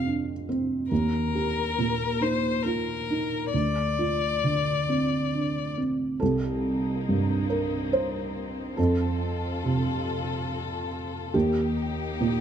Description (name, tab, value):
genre	neoclassical piano and strings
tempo	70 BPM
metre	3/4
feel	rubato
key	C dorian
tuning	A4 = 440 Hz
part	rich violin	melody	0.0-5.7 s	Bb4 to D5	-28 LUFS	left 7 dB	none
part	felt-muted upright piano	accompaniment	0.0-12.4 s	C2 to C5	-25 LUFS	right 2 dB	none
part	rich chamber string section	sustained chords	6.2-12.4 s	Bb3 to A4	-34 LUFS	left 5 dB	none
room	light reverb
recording	close, detailed microphones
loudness	-24 LUFS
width	side -8 dB against mid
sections	0.0-6.2 A section; 6.2-12.4 A section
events	none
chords	0.0 F5; 0.9 Eb; 3.5 Dm7; 6.2 Cm7; 8.8 F; 11.3 Eb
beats	0.05 | 0.91 1.77 2.64 | 3.53 4.42 5.32 | 6.20 7.07 7.93 | 8.78 9.63 10.48 | 11.34 12.20